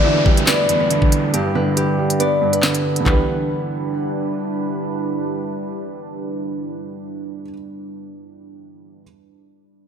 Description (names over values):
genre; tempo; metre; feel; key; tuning
hip hop, drill; 139 BPM; 4/4; half-time; E minor; A4 = 440 Hz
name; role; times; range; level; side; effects
concert harp; melody; 0.0-5.1 s; F#4 to F#5; -22 LUFS; left 5 dB; ping-pong delay
felt-muted upright piano; accompaniment; 0.0-9.0 s; E2 to B3; -22 LUFS; right 4 dB; none
deep dark ambient pad; sustained chords; 0.0-7.3 s; G3 to F#5; -25 LUFS; right 1 dB; chorus, built-in reverb
downlifter; sound effects; 0.0-3.1 s; none; -27 LUFS; equal; none
drill drum kit; drums; 0.3-3.2 s; handclaps, hi-hat, kick drum, snare drum, toms; -18 LUFS; equal; none
room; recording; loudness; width
light reverb, digital ambience; none; -17 LUFS; side -8 dB against mid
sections
0.0-3.1 A section; 3.1-6.5 B section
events
none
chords
0.0 Em7; 1.3 Gmaj7; 3.1 Em7